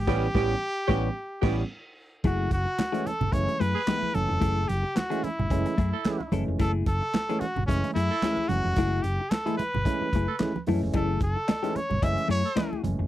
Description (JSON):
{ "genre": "funk", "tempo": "110 BPM", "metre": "4/4", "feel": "swing 56% on 16ths", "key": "unclear", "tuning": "A4 = 440 Hz", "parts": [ { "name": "bright trumpet", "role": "melody", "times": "0.0-12.8 s", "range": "C#4 to E5", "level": "-30 LUFS", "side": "equal", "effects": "none" }, { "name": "hollow-body short-scale fingered electric bass", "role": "bass", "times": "0.0-13.1 s", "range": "F1 to F#2", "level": "-28 LUFS", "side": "equal", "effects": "none" }, { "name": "raspy tenor saxophone", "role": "second line", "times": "0.1-12.5 s", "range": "G4 to A4", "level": "-32 LUFS", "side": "right 13 dB", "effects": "none" }, { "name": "clean electric guitar", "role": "accompaniment", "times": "0.1-13.0 s", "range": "A3 to C#5", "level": "-31 LUFS", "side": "left 7 dB", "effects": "phaser" }, { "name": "barky tine electric piano", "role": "stabs", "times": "0.1-13.1 s", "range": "E3 to E4", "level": "-31 LUFS", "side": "right 3 dB", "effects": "phaser" }, { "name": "crunchy breakbeat drum kit", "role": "drums", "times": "0.1-13.0 s", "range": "crash cymbal, handclaps, hi-hat, kick drum, snare drum", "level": "-28 LUFS", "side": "equal", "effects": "none" }, { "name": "congas", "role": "percussion", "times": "2.2-13.0 s", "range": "none", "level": "-35 LUFS", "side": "right 5 dB", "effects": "none" }, { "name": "cowbell", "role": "percussion", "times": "10.9-12.7 s", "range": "none", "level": "-38 LUFS", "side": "left 6 dB", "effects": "none" } ], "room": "little or no reverb", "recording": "dry, close 1970s-style studio recording", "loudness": "-24 LUFS", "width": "side -14 dB against mid", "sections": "0.0-2.2 A section; 2.2-13.1 B section", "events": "band accent 0.1-2.2", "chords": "0.0 A9; 2.2 F#m9", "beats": "| 0.07 0.61 1.16 1.70 | 2.25 2.79 3.33 3.88 | 4.42 4.96 5.51 6.05 | 6.59 7.14 7.68 8.22 | 8.77 9.31 9.85 10.39 | 10.94 11.48 12.02 12.56" }